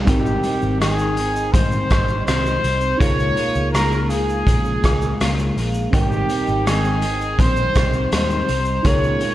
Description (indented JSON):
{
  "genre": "indie pop, bedroom pop",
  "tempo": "82 BPM",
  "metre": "4/4",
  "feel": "straight",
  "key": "Ab major",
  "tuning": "A4 = 440 Hz",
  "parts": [
    { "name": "mellow reed electric piano", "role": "accompaniment", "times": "0.0-9.3 s", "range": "C4 to G5", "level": "-28 LUFS", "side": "right 5 dB", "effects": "none" },
    { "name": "twelve-string electric guitar", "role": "accompaniment", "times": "0.0-9.3 s", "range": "Ab2 to F4", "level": "-25 LUFS", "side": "left 2 dB", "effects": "analog chorus, warbly pitch drift" },
    { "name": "vintage muted fingered electric bass", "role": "bass", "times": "0.0-9.1 s", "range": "Ab1 to Ab2", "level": "-23 LUFS", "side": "equal", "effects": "none" },
    { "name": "breathy trumpet", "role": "melody", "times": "0.1-9.3 s", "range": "G4 to Db5", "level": "-22 LUFS", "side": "equal", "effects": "lush chorus, slapback echo" },
    { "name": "raw garage drum kit", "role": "drums", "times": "0.1-9.3 s", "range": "hi-hat, kick drum, rim click, shaker", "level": "-20 LUFS", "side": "equal", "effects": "none" }
  ],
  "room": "light reverb, small room ambience",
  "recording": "dark, warm production",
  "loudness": "-16 LUFS",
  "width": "side -14 dB against mid",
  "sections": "0.1-9.3 A section",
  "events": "none",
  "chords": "0.1 Abmaj7; 3.0 Db6; 5.9 Abmaj7",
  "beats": "| 0.08 0.81 1.54 2.27 | 3.00 3.73 4.46 5.20 | 5.93 6.66 7.39 8.12 | 8.85"
}